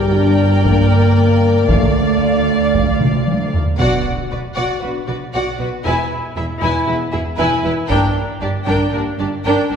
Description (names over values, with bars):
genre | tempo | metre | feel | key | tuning
cinematic, epic orchestral film score | 116 BPM | 4/4 | straight | unclear | A4 = 438 Hz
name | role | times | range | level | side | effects
warm symphonic violin section | melody | 0.0-9.8 s | Bb4 to G#5 | -25 LUFS | left 3 dB | none
warm symphonic violin section | second line | 0.0-9.8 s | D4 to D5 | -25 LUFS | left 3 dB | none
rich studio viola section | accompaniment | 0.0-9.8 s | D4 to D5 | -21 LUFS | right 1 dB | none
mellow French horn section | sustained chords | 0.0-9.1 s | A3 to G#4 | -19 LUFS | equal | none
warm symphonic cello section | bass | 0.0-9.8 s | D2 to B2 | -23 LUFS | right 1 dB | none
warm symphonic double bass section | bass | 0.0-9.8 s | E1 to D2 | -21 LUFS | right 2 dB | none
taiko ensemble | drums | 0.6-8.9 s | none | -20 LUFS | equal | none
impact | sound effects | 3.8-5.9 s | none | -28 LUFS | right 1 dB | none
room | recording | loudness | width
wet concert hall reverb, RT60 1.9 s | recorded in a church or concert hall | -14 LUFS | side -7 dB against mid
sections
0.0-3.8 A section; 3.8-9.8 B section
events
drum fill 3.0-3.8; band accent 3.8-4.3; impact 3.8-5.9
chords
0.0 Gm; 1.7 Dm; 3.8 Bm; 5.9 E; 7.9 Gm